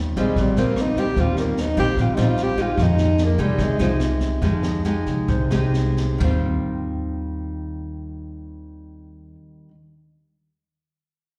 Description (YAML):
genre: bossa nova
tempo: 126-149 BPM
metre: 4/4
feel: straight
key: Eb major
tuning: A4 = 438 Hz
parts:
  - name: nylon-string guitar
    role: accompaniment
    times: 0.0-9.7 s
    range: Bb2 to G4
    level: -27 LUFS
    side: equal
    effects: slapback echo
  - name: upright bass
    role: bass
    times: 0.0-9.3 s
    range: Bb1 to F2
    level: -26 LUFS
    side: equal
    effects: none
  - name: breathy tenor saxophone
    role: melody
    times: 0.2-3.9 s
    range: F3 to G4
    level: -26 LUFS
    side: equal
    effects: slapback echo
  - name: jazz brush drum kit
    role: drums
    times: 0.2-6.3 s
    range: kick drum, rim click, snare drum, toms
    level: -30 LUFS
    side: equal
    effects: none
room: light reverb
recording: live gig heard through the venue's PA, recital hall reverb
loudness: -21 LUFS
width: mono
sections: 0.0-6.2 A section; 6.2-10.0 B section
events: tenor saxophone solo 0.0-6.2; slowing down 2.8-6.2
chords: 0.0 Eb69; 2.8 Fm9; 6.2 Eb69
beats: 0.36 0.77 | 1.17 1.57 1.97 2.37 | 2.78 3.18 3.59 4.00 | 4.42 4.85 5.29 5.74 | 6.21 6.68 7.15 7.63 | 8.10 8.58 9.05 9.53